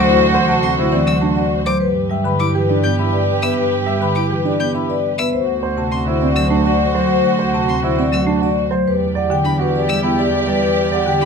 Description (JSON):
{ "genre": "classical, minimalist pattern music", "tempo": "102 BPM", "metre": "3/4", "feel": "straight", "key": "G major", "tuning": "A4 = 441 Hz", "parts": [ { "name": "vibraphone with medium mallets", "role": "melody", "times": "0.0-11.3 s", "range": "B4 to B5", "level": "-20 LUFS", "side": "left 10 dB", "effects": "none" }, { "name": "dark soprano saxophone", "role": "second line", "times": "0.0-11.3 s", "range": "F#4 to G4", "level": "-24 LUFS", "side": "right 6 dB", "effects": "none" }, { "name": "marimba with medium mallets", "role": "accompaniment", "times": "0.0-11.3 s", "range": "C3 to E4", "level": "-20 LUFS", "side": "right 1 dB", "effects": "none" }, { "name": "rich studio string section", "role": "sustained chords", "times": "0.0-11.3 s", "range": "F#4 to D5", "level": "-24 LUFS", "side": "left 1 dB", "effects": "none" }, { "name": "dark baby grand piano", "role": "arpeggios", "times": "0.0-11.3 s", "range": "C4 to E5", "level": "-23 LUFS", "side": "right 8 dB", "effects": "none" }, { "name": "rich studio double bass section", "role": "bass", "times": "0.0-11.3 s", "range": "D2 to G2", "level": "-22 LUFS", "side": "right 1 dB", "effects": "none" }, { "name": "rich violin", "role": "arpeggios", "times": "0.6-11.3 s", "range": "B5 to G6", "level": "-25 LUFS", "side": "left 5 dB", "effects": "none" } ], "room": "light reverb", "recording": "close, detailed microphones", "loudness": "-14 LUFS", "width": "side -6 dB against mid", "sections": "0.0-11.3 A section", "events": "none", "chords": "0.0 D7; 1.8 G; 5.3 D7; 8.9 Em7", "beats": "| 0.04 0.63 1.21 | 1.80 2.39 2.98 | 3.57 4.16 4.74 | 5.33 5.92 6.51 | 7.10 7.68 8.27 | 8.86 9.45 10.04 | 10.63 11.21" }